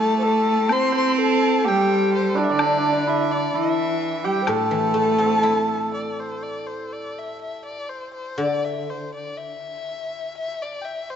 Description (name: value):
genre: chinese traditional, Chinese chamber ensemble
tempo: 62 BPM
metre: 2/4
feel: rubato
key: A yu mode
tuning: A4 = 440 Hz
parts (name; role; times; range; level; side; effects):
- dark erhu; melody; 0.0-11.2 s; C5 to C6; -26 LUFS; left 2 dB; none
- clear cello; second line; 0.0-5.9 s; D3 to C4; -24 LUFS; right 5 dB; none
- hammered dulcimer; second line; 0.0-8.7 s; D4 to C5; -25 LUFS; right 3 dB; none
- mellow low xiao; second line; 0.0-5.9 s; D4 to C5; -24 LUFS; left 5 dB; none
- woodblock; percussion; 0.7-4.7 s; none; -30 LUFS; left 5 dB; none
- guzheng; accompaniment; 4.5-11.2 s; A2 to E4; -28 LUFS; left 2 dB; none
room: moderate concert hall reverb, RT60 2.1 s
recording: nothing above 7.8 kHz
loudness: -19 LUFS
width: side -8 dB against mid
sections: 0.0-6.4 A section; 6.4-11.2 B section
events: none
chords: none